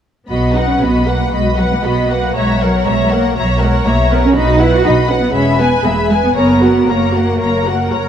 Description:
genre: quick classical-period movement for string orchestra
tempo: 118 BPM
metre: 4/4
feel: rubato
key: B major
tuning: A4 = 440 Hz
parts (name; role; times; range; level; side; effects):
- rich studio violin section; melody; 0.3-8.1 s; F#5 to B5; -22 LUFS; left 4 dB; none
- rich studio violin section; second line; 0.3-8.1 s; A#4 to G#5; -20 LUFS; left 4 dB; none
- rich studio viola section; accompaniment; 0.3-8.1 s; F#4 to C#5; -19 LUFS; right 2 dB; none
- rich studio double bass section; bass; 0.3-8.1 s; E1 to B1; -17 LUFS; right 1 dB; none
- warm studio cello section; bass; 0.3-7.9 s; F#3 to F#4; -16 LUFS; right 1 dB; none
room: moderate scoring stage reverb, RT60 2.0 s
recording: none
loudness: -11 LUFS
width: side -9 dB against mid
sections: 0.3-8.1 A section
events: none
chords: 0.3 B; 2.4 F#7/B; 4.4 B; 5.3 E; 6.4 F#

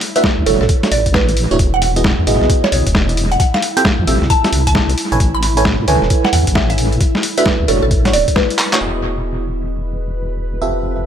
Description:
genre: UK garage, two-step garage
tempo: 133 BPM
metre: 4/4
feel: swing 64% on 16ths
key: E major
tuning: A4 = 439 Hz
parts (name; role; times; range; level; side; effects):
- ethereal airy pad; sustained chords; 0.0-11.1 s; E4 to B4; -26 LUFS; equal; ensemble chorus, built-in reverb, sidechain pumping
- boom bap sampler-style drum kit; drums; 0.0-8.8 s; handclaps, hi-hat, snare drum; -18 LUFS; equal; overdrive, analog delay
- mallet-like synth pluck; melody; 0.2-8.8 s; A4 to B5; -20 LUFS; right 2 dB; phaser, lush chorus, analog delay
- FM electric piano; stabs; 0.2-11.1 s; A3 to G#5; -19 LUFS; right 2 dB; chorus, tremolo, phaser, low-pass filter, analog delay
- electronic kick drum; drums; 0.2-8.5 s; none; -16 LUFS; equal; overdrive
- deep soft wobble bass; bass; 0.4-11.1 s; D1 to A2; -17 LUFS; equal; chorus
room: light reverb, digital ambience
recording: echo-heavy mix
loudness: -12 LUFS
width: side -9 dB against mid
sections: 0.0-8.8 A section; 8.8-11.1 B section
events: drum fill 8.6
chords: 0.0 Dmaj9; 1.6 Emaj9; 3.4 Fmaj9; 5.0 Amaj9; 7.0 Dmaj9; 8.8 Emaj9

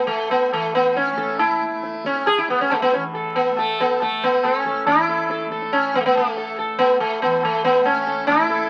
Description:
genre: indian classical, Hindustani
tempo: 139 BPM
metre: 4/4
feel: straight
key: A raga hamsadhwani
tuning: A4 = 439 Hz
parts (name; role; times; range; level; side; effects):
- sitar; melody; 0.0-8.7 s; A3 to A4; -21 LUFS; equal; none
- tanpura; drone; 0.0-8.7 s; A2 to A3; -35 LUFS; equal; none
- tabla; percussion; 0.1-8.6 s; none; -28 LUFS; equal; none
room: moderate studio reverb, RT60 0.5 s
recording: very old 78 rpm record, vinyl crackle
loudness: -20 LUFS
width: mono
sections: 0.0-4.9 A section; 4.9-8.7 B section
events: speeding up 0.0-8.7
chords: none

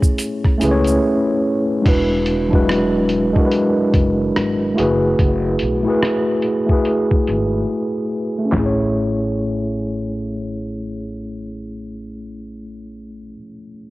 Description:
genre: lo-fi hip hop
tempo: 72 BPM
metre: 4/4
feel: swing 61% on 16ths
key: A major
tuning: A4 = 438 Hz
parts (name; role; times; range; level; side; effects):
- mellow tine electric piano; accompaniment; 0.0-13.9 s; F#3 to C#5; -18 LUFS; equal; slow stereo tremolo, cassette tape
- lo-fi sampler-style drum kit; drums; 0.0-8.8 s; crash cymbal, handclaps, hi-hat, kick drum, rim click, snare drum, toms; -19 LUFS; equal; cassette tape
- tube shaker; percussion; 0.0-1.0 s; none; -33 LUFS; right 4 dB; none
- upright bass; bass; 0.6-13.3 s; E1 to C#2; -25 LUFS; equal; none
room: light reverb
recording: home recording on cassette, low-pass filter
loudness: -15 LUFS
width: side -18 dB against mid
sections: 0.0-1.9 A section; 1.9-8.5 B section; 8.5-11.9 C section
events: silent gap 1.0-1.9; filter sweep 1.9-8.5; break 7.7-8.5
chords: 0.0 Amaj7; 1.9 E9; 4.8 F#m11; 8.5 Amaj7

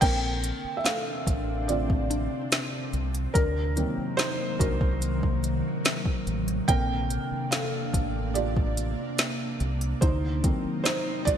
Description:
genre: contemporary R&B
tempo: 72 BPM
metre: 4/4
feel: straight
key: Bb major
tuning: A4 = 440 Hz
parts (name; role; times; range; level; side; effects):
- felt-muted upright piano; accompaniment; 0.0-11.4 s; D3 to G5; -30 LUFS; right 1 dB; lush chorus
- ethereal airy pad; sustained chords; 0.2-11.4 s; C3 to Eb4; -33 LUFS; equal; ensemble chorus, built-in reverb, sidechain pumping
- deep dub fingered electric bass; bass; 0.0-11.4 s; A1 to D2; -29 LUFS; equal; none
- smooth R&B drum kit; drums; 0.0-11.4 s; crash cymbal, hi-hat, kick drum, snare drum; -27 LUFS; equal; none
- mallet-like synth pluck; texture; 0.0-10.3 s; A3 to C5; -40 LUFS; left 1 dB; chorus, phaser, digital delay
room: moderate lush hall reverb, RT60 2.7 s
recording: bright 1980s-style digital production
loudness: -24 LUFS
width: side -9 dB against mid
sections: 0.0-11.4 A section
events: felt piano solo 0.0-11.4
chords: 0.0 Bbmaj9; 3.4 D7b9b13; 6.7 Bbmaj9; 10.0 D7b9b13

